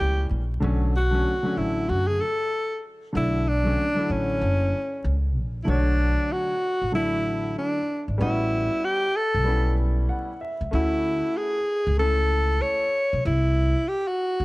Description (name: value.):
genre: hip hop, jazz-hop.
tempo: 95 BPM.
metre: 4/4.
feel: swing 61% on 16ths.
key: B minor.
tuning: A4 = 440 Hz.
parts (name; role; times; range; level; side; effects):
breathy alto saxophone; melody; 0.0-14.4 s; C#4 to C#5; -24 LUFS; equal; none.
warm upright piano; accompaniment; 0.0-12.8 s; D3 to F#5; -29 LUFS; left 1 dB; none.
upright bass; bass; 0.0-14.4 s; F#1 to D2; -24 LUFS; equal; none.
room: studio reverb.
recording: vinyl crackle.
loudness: -22 LUFS.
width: side -21 dB against mid.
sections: 0.0-5.7 A section; 5.7-14.4 B section.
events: upright piano fill 9.8-10.7.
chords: 0.0 F#7b9 (rootless); 0.6 Bm9; 8.2 A13; 10.7 Dmaj9; 13.3 C.